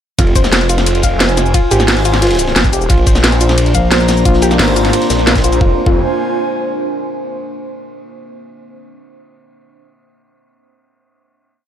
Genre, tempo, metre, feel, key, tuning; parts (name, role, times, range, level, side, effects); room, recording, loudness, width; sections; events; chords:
dark technical drum and bass; 177 BPM; 4/4; straight; F dorian; A4 = 440 Hz
soft round pluck; arpeggios; 0.2-6.0 s; F4 to F5; -19 LUFS; left 1 dB; chorus, sidechain pumping, tape echo
snarling distorted saw bass; bass; 0.2-6.0 s; F1 to Bb1; -15 LUFS; equal; distortion
crunchy breakbeat drum kit; drums; 0.2-5.6 s; hi-hat, ride cymbal, snare drum; -26 LUFS; equal; high-pass filter on cymbals, high-pass filter on hats, high-pass filter on snare, high-pass filter on room
drum and bass drum kit; drums; 0.2-5.6 s; cabasa, hi-hat, snare drum; -15 LUFS; equal
electronic kick drum; drums; 0.2-5.9 s; -14 LUFS; equal
airy breathy pad; texture; 0.2-6.9 s; D4 to Bb5; -20 LUFS; equal; chorus, sidechain pumping
deep dark ambient pad; sustained chords; 3.7-5.8 s; Bb3 to C5; -20 LUFS; equal; chorus, built-in reverb, sidechain pumping
growling FM bass; bass; 3.7-4.6 s; Bb1; -14 LUFS; equal
light reverb, digital ambience; -10 LUFS; side -10 dB against mid
0.2-5.6 drop; 5.6-7.0 final chord
drop 0.2-5.6
0.2 Fm; 2.9 Bbadd9; 5.6 Fm